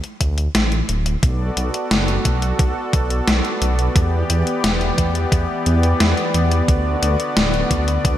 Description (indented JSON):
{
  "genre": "synthwave",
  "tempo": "88 BPM",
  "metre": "4/4",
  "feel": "straight",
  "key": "D major",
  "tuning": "A4 = 442 Hz",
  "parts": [
    { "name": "gated 80s digital drum machine", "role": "drums", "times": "0.0-8.2 s", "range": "hi-hat, snare drum", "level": "-22 LUFS", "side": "left 1 dB", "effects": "gated reverb, gated reverb snare, overdrive" },
    { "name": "dark detuned saw bass", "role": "bass", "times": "0.2-8.2 s", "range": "D1 to E2", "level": "-19 LUFS", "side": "equal", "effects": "sidechain pumping" },
    { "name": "electronic kick drum", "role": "drums", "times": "0.2-8.2 s", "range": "none", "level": "-19 LUFS", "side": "equal", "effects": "overdrive" },
    { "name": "brassy analog pad", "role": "sustained chords", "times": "1.2-8.2 s", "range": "D3 to D5", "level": "-22 LUFS", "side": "left 1 dB", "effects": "chorus" }
  ],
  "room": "moderate lush hall reverb, RT60 2.9 s",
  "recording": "bright 1980s-style digital production",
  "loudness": "-16 LUFS",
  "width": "side -12 dB against mid",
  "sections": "0.0-8.2 A section",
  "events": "none",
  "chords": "0.0 D5; 1.2 Bm7; 4.0 Em7; 6.7 D6"
}